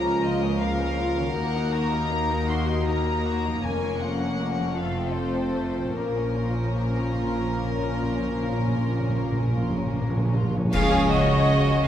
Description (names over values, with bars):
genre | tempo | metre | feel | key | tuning
classical, slow romantic movement for symphony orchestra | 49-54 BPM (dotted quarters) | 12/8 | rubato | Bb minor | A4 = 440 Hz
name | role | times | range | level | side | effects
warm studio violin section | melody | 0.0-11.9 s | Bb4 to C6 | -31 LUFS | left 3 dB | none
clear studio violin section | second line | 0.0-11.9 s | A3 to Bb4 | -32 LUFS | left 1 dB | none
dark chamber viola section | accompaniment | 0.0-11.8 s | F3 to Db5 | -31 LUFS | right 1 dB | none
mellow French horn section | sustained chords | 0.0-11.9 s | A3 to Ab4 | -31 LUFS | left 4 dB | none
concert harp | arpeggios | 0.0-11.9 s | Bb2 to Bb4 | -34 LUFS | left 5 dB | none
dark symphonic double bass section | bass | 0.0-11.7 s | F1 to Eb2 | -31 LUFS | right 2 dB | none
rich symphonic cello section | bass | 0.0-11.7 s | Db2 to Db3 | -30 LUFS | right 1 dB | none
timpani | percussion | 3.6-10.7 s | F2 to Bb2 | -29 LUFS | right 1 dB | none
warm trombone section | sustained chords | 10.7-11.9 s | Db3 to Ab3 | -29 LUFS | right 2 dB | none
mellow tuba | bass | 10.7-11.7 s | Db2 | -28 LUFS | right 2 dB | none
clash cymbals and concert bass drum | percussion | 10.7-11.9 s | none | -29 LUFS | equal | none
room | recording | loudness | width
moderate scoring stage reverb, RT60 1.7 s | vinyl crackle | -22 LUFS | side -10 dB against mid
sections
0.0-10.7 A section; 10.7-11.9 B section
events
timpani fill 6.0-10.7; band accent 10.7-11.5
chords
0.0 Bbm/Db; 1.4 Ebm; 3.6 Bbm/F; 4.8 F; 6.0 Bbm; 10.7 Db